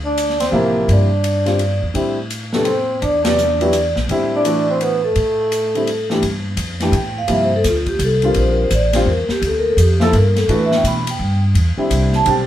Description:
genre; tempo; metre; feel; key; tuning
modal jazz; 169 BPM; 3/4; swing 64% on 8ths; G dorian; A4 = 440 Hz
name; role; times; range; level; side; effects
bright trombone; second line; 0.0-6.1 s; A3 to D4; -24 LUFS; left 1 dB; none
upright bass; bass; 0.0-12.5 s; A1 to B2; -19 LUFS; equal; none
vibraphone with medium mallets; melody; 0.1-12.5 s; F4 to B5; -18 LUFS; equal; none
swinging big-band drum kit; drums; 0.2-12.4 s; hi-hat, kick drum, ride cymbal, snare drum; -25 LUFS; left 2 dB; none
warm concert grand piano; accompaniment; 0.5-12.5 s; C3 to A4; -19 LUFS; equal; none
room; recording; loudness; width
light reverb; band playing live in one room; -14 LUFS; side -12 dB against mid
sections
0.0-6.2 A section; 6.2-12.5 B section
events
band accent 3.2; vibraphone solo 6.2-12.5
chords
0.0 Gm11; 2.0 Am11; 6.2 Gm11; 10.5 Am11

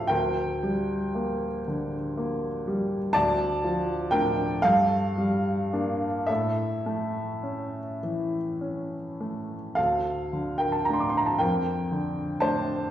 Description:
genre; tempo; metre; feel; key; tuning
classical, romantic nocturne for solo piano; 33-41 BPM (dotted quarters); 6/8; rubato; D minor; A4 = 441 Hz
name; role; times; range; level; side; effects
warm upright piano; solo; 0.0-12.9 s; D2 to D6; -24 LUFS; equal; none
room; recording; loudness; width
wet recital hall reverb, RT60 1.5 s; recorded in a church or concert hall; -24 LUFS; side -11 dB against mid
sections
0.0-12.9 A section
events
none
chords
0.1 Gm/D; 3.1 Dm; 4.6 Gm; 6.3 A; 9.8 Dm; 11.4 Dm/F

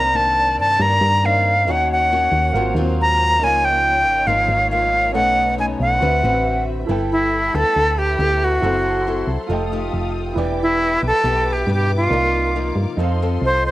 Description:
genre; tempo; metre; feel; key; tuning
bossa nova; 138 BPM; 4/4; straight; G major from 6.9 s; A4 = 441 Hz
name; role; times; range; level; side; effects
breathy bright silver concert flute; melody; 0.0-13.7 s; E4 to Bb5; -16 LUFS; equal; cassette tape, plate reverb
nylon-string guitar; accompaniment; 0.0-13.7 s; G2 to B4; -26 LUFS; left 6 dB; cassette tape, plate reverb
warm baby grand piano; accompaniment; 0.0-13.7 s; C4 to Bb5; -28 LUFS; right 6 dB; cassette tape, plate reverb
warm symphonic string section; sustained chords; 0.0-13.7 s; Bb3 to Eb6; -31 LUFS; left 1 dB; cassette tape, plate reverb
solid FM bass; bass; 0.0-13.7 s; E1 to G2; -22 LUFS; equal; none
room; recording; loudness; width
moderate studio reverb, RT60 0.7 s; home recording on cassette; -15 LUFS; side -16 dB against mid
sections
0.0-6.9 A section; 6.9-13.7 B section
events
none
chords
0.0 Cm9; 1.7 Ebm7; 2.5 Ab13; 3.4 Db69; 5.1 B9; 6.0 D13; 6.9 G69; 8.6 F#m7b5; 9.5 F9; 10.4 Em7; 12.1 Cm11; 13.0 F7

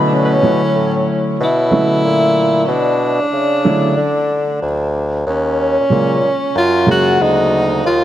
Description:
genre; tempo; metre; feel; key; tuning
hip hop; 93 BPM; 4/4; swing 64% on 16ths; unclear; A4 = 440 Hz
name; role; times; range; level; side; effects
dark grand piano; accompaniment; 0.0-7.8 s; Db3 to Ab4; -17 LUFS; right 1 dB; none
warm bassoon; bass; 0.0-8.0 s; D2 to D3; -18 LUFS; equal; none
breathy tenor saxophone; melody; 0.1-8.0 s; C#4 to Gb4; -16 LUFS; equal; tape echo
vibraphone with soft mallets; second line; 0.1-8.0 s; C#5 to Gb5; -23 LUFS; left 4 dB; none
room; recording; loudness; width
moderate church reverb, RT60 3.5 s; dreamy mix soaked in reverb, vinyl crackle; -12 LUFS; side -12 dB against mid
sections
0.0-5.3 A section; 5.3-8.0 A section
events
none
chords
0.0 Bm11; 5.3 Ebm11

